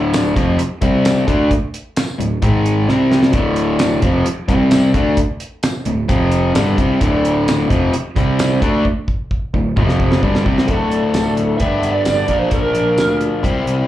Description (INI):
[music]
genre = classic rock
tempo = 131 BPM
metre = 4/4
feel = straight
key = unclear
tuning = A4 = 443 Hz
[part]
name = crunchy overdriven guitar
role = riff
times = 0.0-13.9 s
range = D2 to C5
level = -17 LUFS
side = left 3 dB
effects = slapback echo
[part]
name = sludgy distorted guitar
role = riff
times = 0.0-10.7 s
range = D2 to D4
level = -21 LUFS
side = right 7 dB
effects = overdrive, slapback echo
[part]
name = picked electric bass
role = bass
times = 0.0-13.8 s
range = D1 to D2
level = -20 LUFS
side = equal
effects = none
[part]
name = damped 70s drum kit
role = drums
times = 0.1-13.8 s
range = hi-hat, kick drum, snare drum, tambourine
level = -19 LUFS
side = equal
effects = none
[part]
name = lead guitar through a small cranked amp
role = melody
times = 10.7-13.2 s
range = A4 to E5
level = -19 LUFS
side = right 3 dB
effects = wah, overdrive, slapback echo, tape echo
[sound]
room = light reverb, studio ambience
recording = live gig heard through the venue's PA, club reverb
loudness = -13 LUFS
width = side -13 dB against mid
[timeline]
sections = 0.0-10.7 A section; 10.7-13.9 B section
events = drum fill 2.9-3.3, 8.8-10.7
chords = 0.0 D5; 0.8 C5; 1.3 D5; 2.4 G#5; 2.9 C5; 3.3 D5; 4.5 C5; 4.9 D5; 6.1 F5; 6.5 D5; 8.2 C5; 8.6 D5; 9.8 F5; 10.2 Gsus4; 10.7 D; 11.6 G; 12.3 Bb